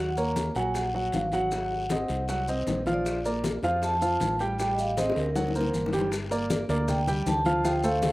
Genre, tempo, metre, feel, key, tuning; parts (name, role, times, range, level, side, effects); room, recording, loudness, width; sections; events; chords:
Afro-Cuban jazz; 156 BPM; 4/4; straight; A4 = 440 Hz
vibraphone with medium mallets; melody; 0.0-8.1 s; Bb4 to Bb5; -30 LUFS; right 1 dB
warm concert grand piano; accompaniment; 0.0-8.1 s; F3 to G5; -28 LUFS; right 1 dB; slapback echo
fingered electric bass; bass; 0.0-8.1 s; G1 to F2; -32 LUFS; equal
bongos; percussion; 0.2-8.1 s; -35 LUFS; left 4 dB; slapback echo
congas; percussion; 0.2-8.1 s; -34 LUFS; left 1 dB
maracas; percussion; 0.2-8.1 s; -44 LUFS; left 2 dB
guiro; percussion; 0.4-8.1 s; -44 LUFS; left 2 dB
little or no reverb; recorded outdoors, with no room sound; -24 LUFS; side -19 dB against mid
0.0-6.1 A section; 6.1-8.1 B section
drum fill 5.0-6.1
0.0 Ebm7; 1.5 Ab9; 3.1 Bb6; 4.6 Am7b5; 5.4 D7b13; 6.1 Gm9